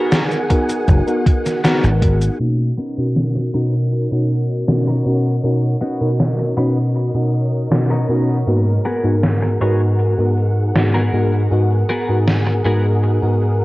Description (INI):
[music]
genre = vaporwave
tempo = 79 BPM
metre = 4/4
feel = straight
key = B major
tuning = A4 = 439 Hz
[part]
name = mellow FM electric piano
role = accompaniment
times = 0.0-13.6 s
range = G#2 to A#4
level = -16 LUFS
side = equal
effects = wide subtle chorus
[part]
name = soft string machine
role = sustained chords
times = 0.0-13.6 s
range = G#4 to G#5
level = -27 LUFS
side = equal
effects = ensemble chorus
[part]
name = twelve-string electric guitar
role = riff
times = 0.0-13.1 s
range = B3 to C#5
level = -26 LUFS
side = left 1 dB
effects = wide subtle chorus, low-pass filter, tape echo
[part]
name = gated 80s digital drum machine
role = drums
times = 0.1-12.4 s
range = cabasa, hi-hat, snare drum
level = -19 LUFS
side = equal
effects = gated reverb, gated reverb snare, overdrive, low-pass filter on hats, low-pass filter on perc, low-pass filter on snare, low-pass filter on room
[part]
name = electronic kick drum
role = drums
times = 0.5-2.2 s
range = none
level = -14 LUFS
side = equal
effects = overdrive
[part]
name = dry thumbed slap bass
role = bass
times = 0.9-2.3 s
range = F#1 to G#1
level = -15 LUFS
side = equal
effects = none
[sound]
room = moderate lush hall reverb, RT60 1.9 s, digital ambience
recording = worn, warbling old tape, cassette tape, warbly pitch drift, low-pass filter, faint mains hum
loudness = -15 LUFS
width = side -19 dB against mid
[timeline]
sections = 0.0-2.4 A section; 2.4-13.6 B section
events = filter sweep on string machine 2.4-13.6; filter sweep 2.4-13.6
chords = 0.0 G#m9; 2.4 Bmaj9; 8.5 G#m9